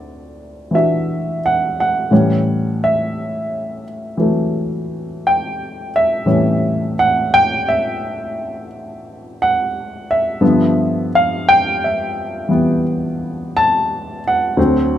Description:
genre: solo jazz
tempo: 58 BPM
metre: 4/4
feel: swing 66% on 8ths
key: unclear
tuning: A4 = 440 Hz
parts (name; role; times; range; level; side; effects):
- dark baby grand piano; solo; 0.0-15.0 s; D2 to A5; -15 LUFS; equal; none
room: light reverb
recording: none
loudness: -15 LUFS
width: side -11 dB against mid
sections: 0.0-15.0 A section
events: grand piano solo 0.0-15.0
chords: 0.0 D7; 2.1 A7; 10.4 G7

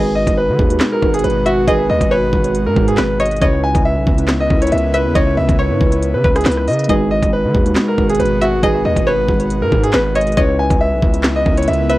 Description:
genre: hip hop, drill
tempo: 138 BPM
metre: 4/4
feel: half-time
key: G# minor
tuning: A4 = 438 Hz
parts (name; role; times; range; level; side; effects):
- bright concert grand piano; melody; 0.0-12.0 s; F#4 to G#5; -18 LUFS; equal; tape echo
- string-like resonator pluck; second line; 0.0-12.0 s; B4 to E5; -22 LUFS; left 1 dB; chorus, tape echo
- muted felt-like synth keys; accompaniment; 0.0-12.0 s; C#3 to B4; -20 LUFS; right 1 dB; chorus
- airy breathy pad; sustained chords; 0.7-12.0 s; B2 to F#4; -24 LUFS; equal; chorus
- distorted 808-style bass; bass; 0.0-12.0 s; G#1 to D#3; -19 LUFS; equal; distortion
- drill drum kit; drums; 0.3-12.0 s; handclaps, hi-hat, kick drum, rim click, snare drum; -17 LUFS; equal; vintage 12-bit sampler grit
room: little or no reverb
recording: dry, gritty hardware recording, vinyl crackle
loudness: -12 LUFS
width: side -17 dB against mid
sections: 0.0-12.0 A section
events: none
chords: 0.0 G#m7; 3.4 C#m7; 6.9 G#m7; 10.4 C#m7

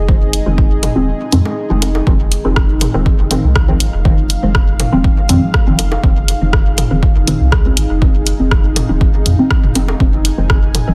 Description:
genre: dub techno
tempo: 121 BPM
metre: 4/4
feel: straight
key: F minor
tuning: A4 = 440 Hz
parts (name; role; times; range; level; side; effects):
- dark analog pad; sustained chords; 0.0-10.9 s; Eb4 to Ab5; -26 LUFS; equal; chorus, sidechain pumping
- soft dub sub bass; bass; 0.0-10.9 s; Eb1 to F2; -19 LUFS; equal; sidechain pumping
- filtered dub chord stab; stabs; 0.1-10.9 s; Eb3 to C4; -21 LUFS; equal; phaser, cassette tape, sidechain pumping, dub echo
- electronic kick drum; drums; 0.1-10.6 s; none; -16 LUFS; equal; studio reverb
- deep house drum kit; drums; 0.3-10.8 s; hi-hat, rim click; -21 LUFS; equal; studio reverb, dub echo
- electronic toms and bongos; percussion; 0.8-10.8 s; none; -26 LUFS; equal; overdrive, sidechain pumping on toms, studio reverb, sidechain pumping on perc, dub echo
room: digital ambience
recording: dense, heavily limited modern master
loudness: -13 LUFS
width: mono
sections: 0.0-10.9 A section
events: filter sweep on synth stab 0.0-10.9; kick drops out 1.1-2.1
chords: 0.0 Fm7

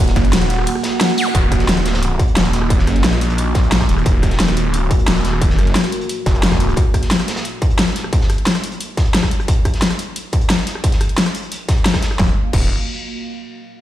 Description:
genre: dark technical drum and bass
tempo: 177 BPM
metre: 4/4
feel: straight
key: Eb minor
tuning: A4 = 439 Hz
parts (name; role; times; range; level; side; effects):
- deep dark ambient pad; sustained chords; 0.0-12.4 s; Bb3 to Gb5; -24 LUFS; right 3 dB; chorus, built-in reverb, sidechain pumping
- crunchy breakbeat drum kit; drums; 0.1-12.2 s; hi-hat, snare drum; -28 LUFS; equal; high-pass filter on hats, studio reverb, high-pass filter on snare, high-pass filter on room
- dubstep drum kit; drums; 0.1-12.6 s; crash cymbal, hi-hat, ride cymbal, rim click, snare drum; -20 LUFS; left 1 dB; studio reverb
- snarling distorted saw bass; bass; 0.2-6.8, 12.2-12.7 s; Eb1 to Bb1; -18 LUFS; equal; distortion, overdrive
- electronic kick drum; drums; 0.2-12.6 s; none; -16 LUFS; equal; distortion, studio reverb
- zap; sound effects; 1.2-1.3 s; none; -24 LUFS; equal; none
room: light reverb, digital ambience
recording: played on a big sound system in a bare room, stone room reverb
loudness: -14 LUFS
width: side -13 dB against mid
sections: 0.0-1.3 A section; 1.3-12.2 B section; 12.2-13.6 C section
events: drop 0.0-1.3; break 0.7-1.3; filter sweep on ambient pad 1.3-12.2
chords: 0.0 Ebm

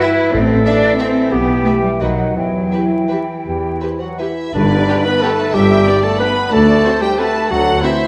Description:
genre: classical, orchestral ballroom waltz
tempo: 154-196 BPM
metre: 3/4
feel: rubato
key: E minor, G major from 4.5 s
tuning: A4 = 440 Hz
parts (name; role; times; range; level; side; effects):
- rich studio violin section; melody; 0.0-8.1 s; D5 to B5; -27 LUFS; equal; none
- rich chamber violin section; second line; 0.0-7.9 s; B3 to E5; -29 LUFS; equal; none
- small flute group; second line; 0.0-8.1 s; D5 to B5; -28 LUFS; equal; none
- warm clarinet; second line; 0.0-8.1 s; D4 to B4; -22 LUFS; equal; none
- mellow bassoon; accompaniment; 0.0-4.3 s; D#3 to E3; -28 LUFS; equal; none
- rich symphonic viola section; accompaniment; 0.0-8.1 s; F#4 to E5; -26 LUFS; equal; none
- warm French horn section; sustained chords; 0.0-8.1 s; D3 to E5; -24 LUFS; equal; none
- rich symphonic cello section; bass; 0.0-7.8 s; D2 to E4; -21 LUFS; equal; none
- clear symphonic double bass section; bass; 0.3-7.8 s; G1 to E2; -22 LUFS; equal; none
- warm tuba; bass; 4.5-7.8 s; G1 to D2; -23 LUFS; equal; none
- tam-tam; percussion; 4.5-5.8 s; none; -28 LUFS; equal; none
room: wet scoring stage reverb, RT60 1.5 s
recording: vinyl crackle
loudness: -15 LUFS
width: mono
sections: 0.0-4.5 A section; 4.5-8.1 B section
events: band accent 4.5-4.9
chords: 0.3 Am; 1.3 Em/B; 2.0 B; 2.4 Em; 4.5 G; 6.5 D7

